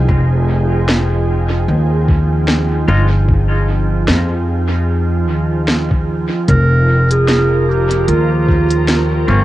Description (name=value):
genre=ambient dub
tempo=75 BPM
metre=4/4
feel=swing 56% on 16ths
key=F minor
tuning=A4 = 436 Hz
part: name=soft additive organ-like pad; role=sustained chords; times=0.0-9.4 s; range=F3 to G5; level=-20 LUFS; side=right 2 dB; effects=ensemble chorus, built-in reverb, vintage 12-bit sampler grit, cassette tape
part: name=upright bass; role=bass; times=0.0-9.4 s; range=F1 to F2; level=-14 LUFS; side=equal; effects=none
part: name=electronic kick drum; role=drums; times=0.1-8.7 s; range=none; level=-16 LUFS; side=equal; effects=none
part: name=organic electronic drum kit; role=drums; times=0.9-9.1 s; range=hi-hat, snare drum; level=-21 LUFS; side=equal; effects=dub echo
part: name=clean electric guitar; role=stabs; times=2.9-3.1, 9.3-9.4 s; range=Ab3 to F4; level=-25 LUFS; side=left 1 dB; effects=vintage 12-bit sampler grit, low-pass filter, cassette tape, dub echo
part: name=mellow clarinet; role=melody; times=6.5-9.3 s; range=F4 to Bb4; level=-16 LUFS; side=right 2 dB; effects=cassette tape, dub echo
room=digital ambience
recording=home recording on cassette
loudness=-12 LUFS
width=side -15 dB against mid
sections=0.0-9.4 A section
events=none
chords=0.0 Fm7; 6.5 Bbmadd9/F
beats=| 0.08 0.88 1.68 2.48 | 3.28 4.08 4.88 5.68 | 6.48 7.28 8.08 8.88